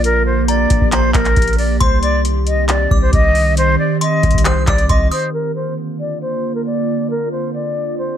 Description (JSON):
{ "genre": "hip hop, trap", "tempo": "136 BPM", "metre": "4/4", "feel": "half-time", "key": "Bb major", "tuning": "A4 = 440 Hz", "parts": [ { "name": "concert flute", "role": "melody", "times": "0.0-8.2 s", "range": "Bb4 to Eb5", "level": "-19 LUFS", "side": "left 1 dB", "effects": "low-pass filter, ping-pong delay" }, { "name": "glassy FM pad", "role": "sustained chords", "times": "0.0-8.2 s", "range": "D3 to G4", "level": "-20 LUFS", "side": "right 2 dB", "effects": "ensemble chorus, built-in reverb" }, { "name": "long sustained 808-style bass", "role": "bass", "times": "0.0-5.1 s", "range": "Bb1 to C2", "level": "-17 LUFS", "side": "equal", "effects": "none" }, { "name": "booming analog drum machine", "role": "drums", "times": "0.0-8.1 s", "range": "handclaps, hi-hat, kick drum", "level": "-16 LUFS", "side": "equal", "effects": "none" }, { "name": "delicate synth tine bell", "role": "second line", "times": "0.5-5.3 s", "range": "Bb5 to Eb6", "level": "-24 LUFS", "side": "left 2 dB", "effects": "chorus, tremolo, phaser, ping-pong delay" } ], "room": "light reverb", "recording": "low-pass filter", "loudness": "-13 LUFS", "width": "side -10 dB against mid", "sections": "0.0-5.3 A section; 5.3-8.2 B section", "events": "filter sweep 5.3-8.2", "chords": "0.0 Bb; 1.8 Cm; 5.3 Bb" }